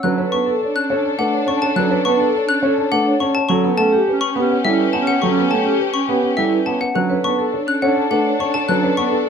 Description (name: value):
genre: classical, minimalist pattern music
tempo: 104 BPM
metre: 3/4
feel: straight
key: B minor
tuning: A4 = 438 Hz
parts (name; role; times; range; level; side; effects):
- dark grand piano; melody; 0.0-9.3 s; G4 to A5; -24 LUFS; left 8 dB; none
- dark clarinet; second line; 0.0-9.3 s; C#4 to D4; -25 LUFS; right 4 dB; none
- warm grand piano; accompaniment; 0.0-9.2 s; F#3 to C#4; -21 LUFS; right 2 dB; none
- rich symphonic string section; sustained chords; 0.0-9.3 s; C#4 to A4; -25 LUFS; left 4 dB; none
- vibraphone with hard mallets; arpeggios; 0.0-9.3 s; C#4 to C#5; -21 LUFS; right 4 dB; none
- xylophone with wooden mallets; arpeggios; 0.0-9.2 s; E5 to F#6; -22 LUFS; left 4 dB; none
room: moderate large studio reverb, RT60 0.8 s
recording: none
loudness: -15 LUFS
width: side -7 dB against mid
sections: 0.0-9.3 A section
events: none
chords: 0.0 Bm7; 3.5 A9; 7.0 Bm7